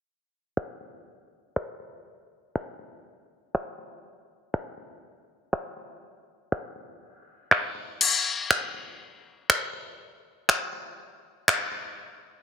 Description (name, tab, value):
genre	pop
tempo	121 BPM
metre	4/4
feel	straight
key	none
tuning	none
part	smooth R&B drum kit	drums	0.6-11.6 s	crash cymbal, finger snaps	-22 LUFS	left 1 dB	soft clipping on snare
room	light reverb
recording	dense, heavily limited modern master, low-pass filter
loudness	-25 LUFS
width	side -9 dB against mid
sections	0.1-8.0 A section; 8.0-12.4 B section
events	filter sweep 0.1-8.0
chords	none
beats	| 0.07 0.57 1.07 1.56 | 2.06 2.55 3.05 3.55 | 4.04 4.54 5.03 5.53 | 6.03 6.52 7.02 7.51 | 8.01 8.51 9.00 9.50 | 9.99 10.49 10.98 11.48